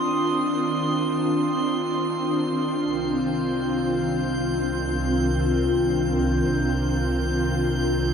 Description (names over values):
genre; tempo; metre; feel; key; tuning
ambient; free time; none; none; C minor; A4 = 440 Hz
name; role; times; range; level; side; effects
ethereal airy pad; sustained chords; 0.0-8.1 s; Eb3 to Bb4; -22 LUFS; equal; ensemble chorus, built-in reverb, shimmer reverb
muted felt-like synth keys; arpeggios; 0.0-2.9 s; Eb6; -33 LUFS; equal; chorus, analog delay, shimmer reverb
drifting glass-harmonics texture; texture; 0.0-8.1 s; C6 to G6; -31 LUFS; right 2 dB; chorus, built-in reverb, shimmer reverb
rich studio double bass section; bass; 2.9-8.1 s; C2; -27 LUFS; equal; none
room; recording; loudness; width
wet lush hall reverb, RT60 2.7 s; dreamy mix soaked in reverb; -21 LUFS; side -7 dB against mid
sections
0.0-2.9 A section; 2.9-8.1 B section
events
none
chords
0.0 Cm11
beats
free time